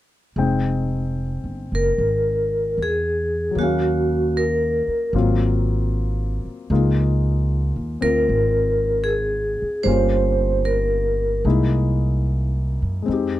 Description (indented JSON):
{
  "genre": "jazz ballad",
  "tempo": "76 BPM",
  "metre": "4/4",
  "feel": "swing 68% on 8ths",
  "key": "F minor",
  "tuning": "A4 = 440 Hz",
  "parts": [
    { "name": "warm grand piano", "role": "accompaniment", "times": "0.4-13.4 s", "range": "Gb3 to G5", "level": "-25 LUFS", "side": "left 6 dB", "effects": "none" },
    { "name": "upright bass", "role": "bass", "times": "0.4-13.4 s", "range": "F1 to Gb2", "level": "-21 LUFS", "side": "right 1 dB", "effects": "none" },
    { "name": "vibraphone with medium hard mallets", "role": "melody", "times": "1.8-11.4 s", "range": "Gb4 to C5", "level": "-20 LUFS", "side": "right 1 dB", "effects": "none" }
  ],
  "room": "little or no reverb",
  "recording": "dry, close 1970s-style studio recording",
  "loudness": "-18 LUFS",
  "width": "side -14 dB against mid",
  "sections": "0.4-13.4 A section",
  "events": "none",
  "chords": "0.4 Fm9; 3.6 Ebm7; 5.1 Ab13; 6.7 Db69; 9.9 Gm7b5; 11.4 C7alt"
}